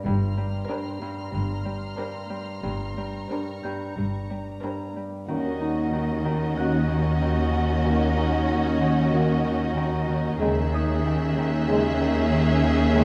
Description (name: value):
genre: cinematic, suspense film score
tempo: 93 BPM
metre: 4/4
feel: straight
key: Eb phrygian from 5.3 s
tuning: A4 = 439 Hz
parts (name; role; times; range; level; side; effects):
- Celtic harp; riff; 0.0-13.0 s; G2 to Eb4; -32 LUFS; equal; none
- rich symphonic cello section; bass; 0.0-13.0 s; Eb2 to G2; -30 LUFS; equal; none
- concert harp; texture; 0.0-13.0 s; Db5 to D7; -42 LUFS; equal; none
- warm symphonic double bass section; bass; 0.1-13.0 s; G1 to Eb2; -30 LUFS; equal; none
- warm symphonic violin section; texture; 0.1-4.9, 10.4-13.0 s; Bb5 to G6; -43 LUFS; equal; none
- dark symphonic violin section; melody; 0.7-13.0 s; C5 to Fb5; -36 LUFS; equal; none
- warm symphonic violin section; second line; 0.7-13.0 s; Gb4 to Bb4; -34 LUFS; equal; none
- rich symphonic viola section; accompaniment; 0.7-13.0 s; Db4 to D4; -33 LUFS; equal; none
- mellow French horn section; sustained chords; 5.3-13.0 s; Db4 to Ab4; -34 LUFS; equal; none
- warm trombone section; sustained chords; 5.3-13.0 s; Db3 to Bb3; -32 LUFS; equal; none
room: wet scoring stage reverb, RT60 1.7 s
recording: dark, warm production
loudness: -25 LUFS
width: mono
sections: 0.0-5.3 A section; 5.3-13.0 B section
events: none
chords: 0.0 Bbadd9/G; 5.3 Ebm7; 10.4 Dbm/Eb